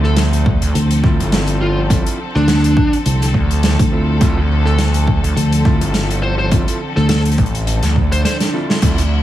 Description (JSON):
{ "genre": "glitch hop", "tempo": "104 BPM", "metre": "4/4", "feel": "swing 56% on 16ths", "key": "D minor", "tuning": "A4 = 441 Hz", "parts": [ { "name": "fuzz lead guitar", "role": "melody", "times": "0.0-8.4 s", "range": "D4 to C5", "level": "-21 LUFS", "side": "right 1 dB", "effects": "distortion, digital delay" }, { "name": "rich studio string section", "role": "sustained chords", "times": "0.0-9.2 s", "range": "D3 to E5", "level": "-23 LUFS", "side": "left 2 dB", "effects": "vintage 12-bit sampler grit, sidechain pumping" }, { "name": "gritty driven synth bass", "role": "bass", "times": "0.0-9.2 s", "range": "G1 to D2", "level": "-16 LUFS", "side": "equal", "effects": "tube saturation" }, { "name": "big rock drum kit", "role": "drums", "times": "0.0-9.1 s", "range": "crash cymbal, hi-hat, rim click, snare drum", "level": "-21 LUFS", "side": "right 1 dB", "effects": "none" }, { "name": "electronic kick drum", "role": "drums", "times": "0.5-9.0 s", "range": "none", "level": "-16 LUFS", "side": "equal", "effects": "overdrive" }, { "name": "fingered electric bass", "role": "bass", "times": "0.8-7.4 s", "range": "C2 to D2", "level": "-14 LUFS", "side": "equal", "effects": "none" }, { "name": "mellow electric guitar", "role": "stabs", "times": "1.0-9.0 s", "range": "C4 to A4", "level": "-24 LUFS", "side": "right 2 dB", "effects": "warbly pitch drift, sidechain pumping, digital delay" }, { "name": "swell", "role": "sound effects", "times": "7.9-8.8 s", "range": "none", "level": "-26 LUFS", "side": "right 3 dB", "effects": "none" } ], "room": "light reverb", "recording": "vinyl crackle, studio ambience", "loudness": "-13 LUFS", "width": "side -13 dB against mid", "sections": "0.0-9.2 A section", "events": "swell 7.9-8.8; drum fill 8.2-8.8", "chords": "0.0 Dm9" }